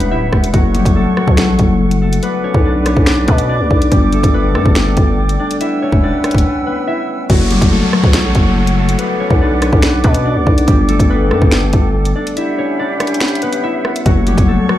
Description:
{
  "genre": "hip hop, drill",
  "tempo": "142 BPM",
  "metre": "4/4",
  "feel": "half-time",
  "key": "F# phrygian",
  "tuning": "A4 = 440 Hz",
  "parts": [
    { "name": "concert harp", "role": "melody", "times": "0.0-14.8 s", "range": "F#3 to E5", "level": "-16 LUFS", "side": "left 3 dB", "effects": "low-pass filter" },
    { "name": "breathy small flute group", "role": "sustained chords", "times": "0.0-14.8 s", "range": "G4 to E6", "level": "-22 LUFS", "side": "right 3 dB", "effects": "none" },
    { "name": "growling 808-style bass", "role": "bass", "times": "0.0-14.6 s", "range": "D1 to B2", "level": "-15 LUFS", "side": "equal", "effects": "none" },
    { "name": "drill drum kit", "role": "drums", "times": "0.0-14.8 s", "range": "crash cymbal, finger snaps, hi-hat, kick drum, rim click, snare drum", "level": "-13 LUFS", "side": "equal", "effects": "none" },
    { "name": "downlifter", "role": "sound effects", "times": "7.3-10.7 s", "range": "none", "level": "-25 LUFS", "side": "equal", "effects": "none" }
  ],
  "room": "little or no reverb",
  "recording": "played on a big sound system in a bare room, large studio reverb",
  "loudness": "-11 LUFS",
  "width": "side -13 dB against mid",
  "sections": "0.0-7.3 A section; 7.3-14.8 B section",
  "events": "break 6.5-7.3, 12.4-14.1",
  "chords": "0.0 Emadd9; 0.5 F#m; 2.2 Bm; 3.9 Gsus2; 5.6 Emadd9; 7.3 F#m; 9.0 Bm; 10.7 Gsus2; 12.4 Emadd9; 14.1 F#m"
}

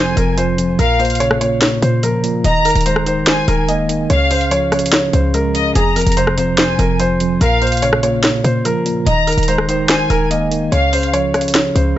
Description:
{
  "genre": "hip hop, trap",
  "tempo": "145 BPM",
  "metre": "4/4",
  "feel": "half-time",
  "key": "unclear",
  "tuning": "A4 = 440 Hz",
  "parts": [
    { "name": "felt-muted upright piano", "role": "melody", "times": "0.0-11.9 s", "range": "Ab4 to Eb5", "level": "-19 LUFS", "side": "equal", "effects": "low-pass filter, tape echo" },
    { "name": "warm studio violin section", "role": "second line", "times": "0.0-11.1 s", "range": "Eb5 to Bb5", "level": "-21 LUFS", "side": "left 2 dB", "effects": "tape echo" },
    { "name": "tine electric piano", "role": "accompaniment", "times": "0.0-12.0 s", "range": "F2 to Bb3", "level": "-19 LUFS", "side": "right 1 dB", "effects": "medium stereo tremolo, low-pass filter" },
    { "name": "short 808-style bass", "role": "bass", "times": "0.0-12.0 s", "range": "Eb1 to Bb2", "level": "-19 LUFS", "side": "equal", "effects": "none" },
    { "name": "trap drum kit", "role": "drums", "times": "0.2-11.9 s", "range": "hi-hat, rim click, snare drum", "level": "-18 LUFS", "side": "equal", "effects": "none" }
  ],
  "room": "studio reverb",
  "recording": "nothing above 7.8 kHz",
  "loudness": "-12 LUFS",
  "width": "side -13 dB against mid",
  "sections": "0.0-12.0 A section",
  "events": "none",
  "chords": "0.0 Fm; 0.8 Bbm; 2.4 Ebsus4; 4.1 Db; 5.8 Fm; 7.4 Bbm; 9.1 Ebsus4; 10.7 Db"
}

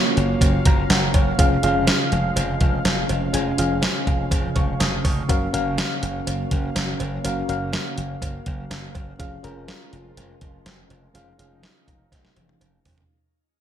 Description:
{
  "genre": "1980s-style pop",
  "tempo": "123 BPM",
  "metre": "4/4",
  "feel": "straight",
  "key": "unclear",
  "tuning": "A4 = 441 Hz",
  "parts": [
    { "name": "FM electric piano with auto-pan", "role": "accompaniment", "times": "0.0-13.1 s", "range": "A#3 to D#6", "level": "-26 LUFS", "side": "left 1 dB", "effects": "shimmer reverb" },
    { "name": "phased analog pad", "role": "sustained chords", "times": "0.0-13.1 s", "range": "C#3 to E#5", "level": "-29 LUFS", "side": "right 2 dB", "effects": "phaser, chorus, shimmer reverb" },
    { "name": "glassy slap bass", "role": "bass", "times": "0.2-13.0 s", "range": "E#1 to F#1", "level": "-25 LUFS", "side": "equal", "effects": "none" },
    { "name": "clean 12-bit digital drum machine", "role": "drums", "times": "0.2-13.1 s", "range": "hi-hat, kick drum, snare drum, tambourine, toms", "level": "-22 LUFS", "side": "equal", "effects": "gated reverb" },
    { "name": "cowbell", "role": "percussion", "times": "0.4-13.0 s", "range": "none", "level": "-36 LUFS", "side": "right 6 dB", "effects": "none" }
  ],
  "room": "moderate plate reverb, RT60 1.4 s, digital ambience",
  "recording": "bright 1980s-style digital production",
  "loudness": "-19 LUFS",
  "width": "side -10 dB against mid",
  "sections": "0.0-13.1 A section",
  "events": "fade-out 0.0-13.1; FM electric piano fill 0.4-1.4; drum fill 12.1-13.1",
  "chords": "0.0 F#maj7; 1.4 C#/E#; 5.3 F#maj7; 9.2 C#/E#"
}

